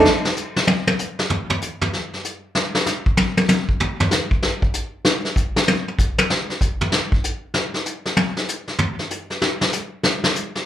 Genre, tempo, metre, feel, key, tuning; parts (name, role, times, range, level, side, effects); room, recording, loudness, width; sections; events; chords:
jazz; 192 BPM; 4/4; swing 64% on 8ths
vintage brush drum kit; drums; 0.1-10.6 s; hi-hat, kick drum, snare drum, toms; -18 LUFS; equal; slapback echo
moderate club reverb, RT60 0.5 s; live gig heard through the venue's PA, club reverb; -18 LUFS; side -11 dB against mid
0.0-10.7 A section
drum solo 0.0-10.7